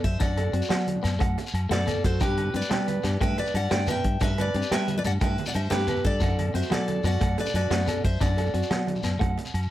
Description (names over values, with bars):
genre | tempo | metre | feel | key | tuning
highlife guitar band | 120 BPM (dotted quarters) | 12/8 | straight | G major | A4 = 438 Hz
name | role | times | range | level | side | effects
picked steel-string acoustic guitar | melody | 0.0-9.2 s | G4 to G5 | -30 LUFS | left 3 dB | none
clean electric guitar | accompaniment | 0.0-9.4 s | A3 to D4 | -34 LUFS | left 6 dB | none
electric guitar through a small old amp | arpeggios | 0.0-9.4 s | F#4 to G5 | -33 LUFS | right 6 dB | tape echo
fingered electric bass | bass | 0.0-9.7 s | F#2 to G3 | -27 LUFS | equal | none
vintage drum kit | drums | 0.0-9.6 s | hi-hat, kick drum, snare drum | -29 LUFS | equal | none
congas | percussion | 0.1-9.6 s | none | -35 LUFS | right 9 dB | none
agogo bells | percussion | 0.2-9.7 s | none | -38 LUFS | left 2 dB | none
shekere | percussion | 0.2-9.7 s | none | -35 LUFS | left 2 dB | none
room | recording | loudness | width
light reverb | none | -23 LUFS | side -14 dB against mid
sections
0.0-9.7 A section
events
none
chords
0.0 D/F#; 2.2 G; 6.2 D/F#